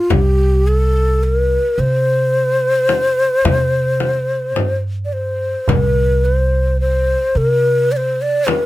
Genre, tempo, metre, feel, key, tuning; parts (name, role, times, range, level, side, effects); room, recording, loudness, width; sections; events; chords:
Arabic maqam ensemble; 108 BPM (eighths); 10/8; straight; A4 = 440 Hz
breathy mellow ney; melody; 0.0-8.7 s; F4 to D5; -16 LUFS; left 1 dB
upright bass; bass; 0.1-8.7 s; C2 to C3; -18 LUFS; right 1 dB
frame drum; percussion; 0.1-8.7 s; -19 LUFS; left 4 dB
darbuka; percussion; 5.7-8.7 s; -23 LUFS; right 5 dB
little or no reverb; close, detailed microphones; -14 LUFS; side -16 dB against mid
0.0-8.7 A section